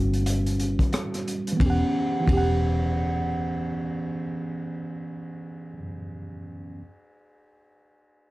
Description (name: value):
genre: R&B, neo-soul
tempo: 89 BPM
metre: 4/4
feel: swing 60% on 16ths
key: unclear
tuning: A4 = 440 Hz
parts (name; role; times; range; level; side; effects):
- tine electric piano; accompaniment; 0.0-6.8 s; E3 to F#5; -27 LUFS; right 1 dB; phaser
- vintage muted fingered electric bass; bass; 0.0-5.8 s; E1 to G1; -26 LUFS; equal; none
- crunchy breakbeat drum kit; drums; 0.1-2.5 s; hi-hat, kick drum, ride cymbal, rim click; -29 LUFS; equal; none
room: light reverb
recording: none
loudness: -23 LUFS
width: side -18 dB against mid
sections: 0.0-1.6 A section; 1.6-4.3 B section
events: tine electric piano solo 0.0-1.6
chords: 0.0 Em69